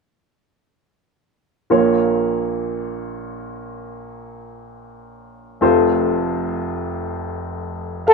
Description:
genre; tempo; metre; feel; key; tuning
pop ballad; 61 BPM; 4/4; straight; Bb harmonic minor; A4 = 439 Hz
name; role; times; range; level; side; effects
clear baby grand piano; accompaniment; 1.7-8.1 s; F1 to F5; -19 LUFS; equal; none
warm flugelhorn; melody; 8.1 s; A4; -6 LUFS; left 1 dB; none
room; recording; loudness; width
moderate studio reverb, RT60 0.5 s; band playing live in one room; -18 LUFS; side -4 dB against mid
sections
1.7-8.1 A section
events
none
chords
1.7 Bbm; 5.6 F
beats
| 1.71 2.70 3.68 4.65 | 5.63 6.60 7.58

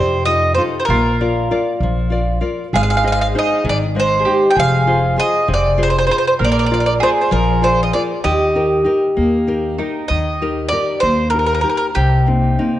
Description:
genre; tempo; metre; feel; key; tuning
italian folk, Italian serenade; 65 BPM (dotted quarters); 6/8; straight; Eb major; A4 = 440 Hz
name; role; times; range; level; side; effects
bowl-back mandolin; melody; 0.0-12.8 s; G4 to G5; -17 LUFS; right 1 dB; none
mandolin; second line; 0.0-10.1 s; Eb4 to Bb4; -20 LUFS; right 1 dB; none
nylon-string guitar; accompaniment; 0.0-12.8 s; C3 to Eb5; -20 LUFS; left 3 dB; none
upright bass; bass; 0.0-12.6 s; F1 to F2; -20 LUFS; equal; none
room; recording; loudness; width
moderate scoring stage reverb, RT60 1.8 s; worn, warbling old tape, cassette tape, warbly pitch drift, nothing above 10.6 kHz; -14 LUFS; side -13 dB against mid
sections
0.0-10.1 A section; 10.1-12.8 A section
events
none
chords
0.0 F7; 0.9 Bb; 2.7 Ab; 4.6 Fm; 6.4 Bb; 8.2 Eb; 12.0 Cm7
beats
| 0.89 1.80 | 2.73 3.65 | 4.57 5.48 | 6.40 7.32 | 8.24 9.17 | 10.10 11.03 | 11.96

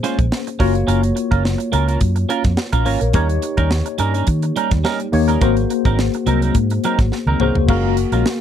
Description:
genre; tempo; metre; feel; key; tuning
polished 1980s jazz-funk pop; 106 BPM; 4/4; swing 54% on 16ths; unclear; A4 = 441 Hz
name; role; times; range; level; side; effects
tine electric piano; accompaniment; 0.0-8.4 s; Bb3 to F5; -20 LUFS; left 6 dB; medium stereo tremolo, lush chorus
clean electric guitar; riff; 0.0-8.3 s; Gb3 to C5; -22 LUFS; right 7 dB; lush chorus
tight funk drum kit; drums; 0.0-8.4 s; crash cymbal, hi-hat, kick drum, snare drum, toms; -20 LUFS; equal; none
vintage muted fingered electric bass; bass; 0.2-8.2 s; Gb1 to Eb3; -18 LUFS; equal; none
room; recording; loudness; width
little or no reverb; dry, close 1970s-style studio recording; -15 LUFS; side -9 dB against mid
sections
0.0-7.7 A section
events
drum fill 7.1-7.7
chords
0.0 Bbm9; 0.6 Gbmaj7; 3.1 Eb7; 5.4 Ab9; 7.7 Gbmaj9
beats
0.32 | 0.88 1.45 2.02 2.58 | 3.15 3.72 4.28 4.85 | 5.42 5.98 6.55 7.12 | 7.68 8.25

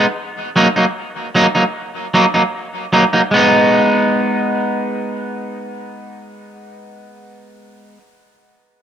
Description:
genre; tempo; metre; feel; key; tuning
reggae; 76 BPM; 4/4; straight; G# minor; A4 = 440 Hz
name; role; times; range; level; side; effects
electric guitar at the edge of break-up; accompaniment; 0.0-8.0 s; F#3 to D#4; -14 LUFS; right 1 dB; dub echo
room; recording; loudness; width
moderate spring reverb, RT60 2.2 s; none; -13 LUFS; side -9 dB against mid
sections
0.0-3.3 A section; 3.3-6.5 B section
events
none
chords
0.2 D#m; 3.3 G#m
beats
| 0.17 0.96 1.75 2.53 | 3.32 4.11 4.90 5.69

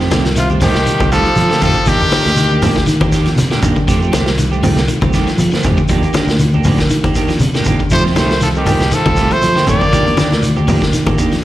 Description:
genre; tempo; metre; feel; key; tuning
afrobeat; 119 BPM; 4/4; swing 54% on 16ths; F mixolydian; A4 = 440 Hz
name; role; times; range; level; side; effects
electric guitar at the edge of break-up; arpeggios; 0.0-11.4 s; D3 to F3; -22 LUFS; left 4 dB; slapback echo
clean electric guitar; stabs; 0.0-11.3 s; Eb3 to G4; -20 LUFS; right 4 dB; analog chorus, slapback echo
fingered electric bass; bass; 0.0-11.4 s; C2 to F3; -16 LUFS; equal; none
vintage drum kit; drums; 0.0-11.4 s; hi-hat, kick drum, snare drum; -19 LUFS; equal; none
shekere; percussion; 0.0-11.4 s; none; -23 LUFS; right 1 dB; none
congas; percussion; 0.1-11.2 s; none; -18 LUFS; left 1 dB; none
brilliant trumpet; melody; 0.4-2.9, 7.9-10.4 s; F4 to D5; -17 LUFS; left 1 dB; slapback echo, tape echo
raspy tenor saxophone; second line; 0.4-2.9, 7.9-10.4 s; C3 to Bb3; -22 LUFS; right 3 dB; slapback echo
room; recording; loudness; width
light reverb; live gig heard through the venue's PA, recital hall reverb; -11 LUFS; side -14 dB against mid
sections
0.0-11.4 A section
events
none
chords
0.0 F9; 1.9 Ebmaj7; 3.9 F9; 5.9 Ebmaj7; 7.9 F9; 9.9 Ebmaj7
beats
0.36 0.86 1.37 | 1.87 2.37 2.88 3.38 | 3.88 4.38 4.89 5.39 | 5.89 6.40 6.90 7.40 | 7.91 8.41 8.91 9.42 | 9.92 10.42 10.93 11.43

